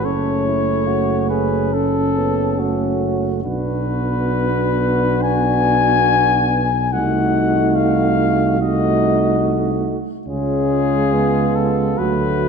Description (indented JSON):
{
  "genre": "classical, hymn-like piece for brass band",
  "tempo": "71 BPM",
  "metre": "4/4",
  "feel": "rubato",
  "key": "F# minor",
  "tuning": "A4 = 440 Hz",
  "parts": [
    { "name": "mellow cornet", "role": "melody", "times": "0.0-12.5 s", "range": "G#4 to G#5", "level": "-21 LUFS", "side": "left 7 dB", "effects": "none" },
    { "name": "mellow flugelhorn", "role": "second line", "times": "0.0-12.5 s", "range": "E4 to A4", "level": "-25 LUFS", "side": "right 8 dB", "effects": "none" },
    { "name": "warm euphonium", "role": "accompaniment", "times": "0.0-12.5 s", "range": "A3 to Eb4", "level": "-22 LUFS", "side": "left 4 dB", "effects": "none" },
    { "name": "mellow tuba", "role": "bass", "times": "0.0-12.5 s", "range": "F#1 to D2", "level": "-21 LUFS", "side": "right 1 dB", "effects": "none" },
    { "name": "mellow euphonium", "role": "accompaniment", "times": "0.1-12.5 s", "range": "F#3 to C#4", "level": "-23 LUFS", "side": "right 6 dB", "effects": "none" }
  ],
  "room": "wet concert hall reverb, RT60 1.8 s",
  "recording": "dark, warm production",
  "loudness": "-15 LUFS",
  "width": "side -6 dB against mid",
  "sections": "0.0-12.5 A section",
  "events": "none",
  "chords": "0.0 F#m; 3.4 Bm; 6.9 Cdim7; 10.3 C#",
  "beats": "| 0.04 0.88 1.74 2.61 | 3.45 4.29 5.23 6.09 | 6.92 7.76 8.61 9.45 | 10.27 11.12 11.99"
}